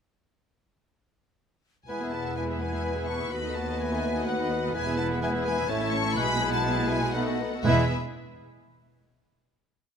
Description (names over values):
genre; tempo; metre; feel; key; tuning
quick classical-period movement for symphony orchestra; 125 BPM; 3/4; rubato; E major; A4 = 440 Hz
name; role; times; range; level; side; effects
warm studio violin section; melody; 1.9-7.9 s; E5 to C#6; -33 LUFS; left 4 dB; none
bright clarinet; second line; 1.9-7.9 s; D#4 to F#4; -38 LUFS; left 4 dB; none
flute section; second line; 1.9-7.9 s; D#5 to A5; -36 LUFS; left 2 dB; none
warm oboe; second line; 1.9-7.8 s; B4 to C#5; -36 LUFS; equal; none
warm studio violin section; second line; 1.9-7.9 s; C#4 to E5; -37 LUFS; left 4 dB; none
clear bassoon; accompaniment; 1.9-7.9 s; G#3 to B3; -34 LUFS; equal; none
warm studio viola section; accompaniment; 1.9-7.9 s; G#3 to G#4; -37 LUFS; right 3 dB; none
mellow French horn section; sustained chords; 1.9-7.9 s; G#3 to F#4; -35 LUFS; left 5 dB; none
rich studio cello section; bass; 1.9-7.9 s; D#2 to B2; -32 LUFS; right 3 dB; none
warm studio double bass section; bass; 1.9-7.9 s; E1 to D#2; -33 LUFS; right 5 dB; none
room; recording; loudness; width
moderate scoring stage reverb, RT60 1.8 s; none; -25 LUFS; side -7 dB against mid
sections
1.9-7.6 A section; 7.6-9.1 final chord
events
none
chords
1.9 E; 3.3 B7/D#; 4.7 E; 5.7 A; 6.2 E/B; 7.1 B7; 7.6 E